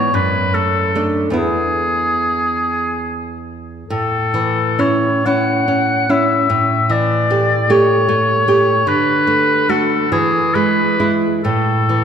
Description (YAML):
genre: romantic duo for oboe and classical guitar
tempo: 43-51 BPM (dotted quarters)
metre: 6/8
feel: rubato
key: A major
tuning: A4 = 444 Hz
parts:
  - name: clear oboe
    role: melody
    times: 0.0-12.0 s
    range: G#4 to F#5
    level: -17 LUFS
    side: left 2 dB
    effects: none
  - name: nylon-string guitar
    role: accompaniment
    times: 0.0-12.0 s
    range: E2 to G4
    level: -16 LUFS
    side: right 1 dB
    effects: none
room: wet church reverb, RT60 2.5 s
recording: recorded in a church or concert hall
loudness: -13 LUFS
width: side -7 dB against mid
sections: 0.0-12.0 A section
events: none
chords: 0.1 D/F#; 1.4 E; 3.9 A; 6.5 A7; 8.9 D; 10.1 E; 11.4 A5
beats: 0.14 | 1.36 2.61 | 3.90 5.25 | 6.50 7.70 | 8.87 10.11 | 11.44